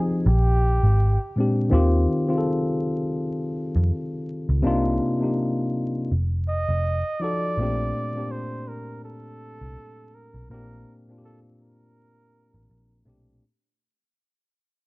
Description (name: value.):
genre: lo-fi hip hop.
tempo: 82 BPM.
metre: 4/4.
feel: swing 56% on 16ths.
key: Bb major.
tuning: A4 = 438 Hz.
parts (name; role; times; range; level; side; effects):
tine electric piano; accompaniment; 0.0-13.5 s; Bb2 to A4; -24 LUFS; left 1 dB; low-pass filter, plate reverb.
breathy flugelhorn; melody; 0.3-1.3, 6.5-13.0 s; G4 to Eb5; -30 LUFS; right 2 dB; low-pass filter, plate reverb.
vintage muted picked electric bass; bass; 0.3-13.4 s; F1 to F2; -20 LUFS; equal; none.
room: light reverb.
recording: dark, warm production, vinyl crackle, nothing above 7.8 kHz.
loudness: -21 LUFS.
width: side -22 dB against mid.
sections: 0.0-13.4 A section.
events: fade-out 0.0-13.4.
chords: 0.3 Bb13; 1.7 Eb69; 4.6 Cm11; 6.1 F7b9; 7.6 Bbmaj13.